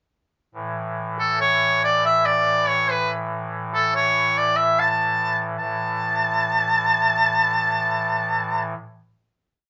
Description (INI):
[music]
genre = medieval dance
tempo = 138-158 BPM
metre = 3/4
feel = straight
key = A major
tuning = A4 = 443 Hz
[part]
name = pipe organ, soft reed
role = drone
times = 0.5-8.7 s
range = A2 to E3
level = -29 LUFS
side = equal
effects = none
[part]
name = bright shawm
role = melody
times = 1.2-8.7 s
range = A4 to A5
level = -21 LUFS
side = equal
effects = none
[sound]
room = wet small room reverb, RT60 0.5 s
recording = rough home demo mix, nothing above 7.5 kHz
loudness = -21 LUFS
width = mono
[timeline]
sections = 0.5-5.6 A section; 5.6-7.9 final chord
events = speeding up 0.5-7.9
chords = none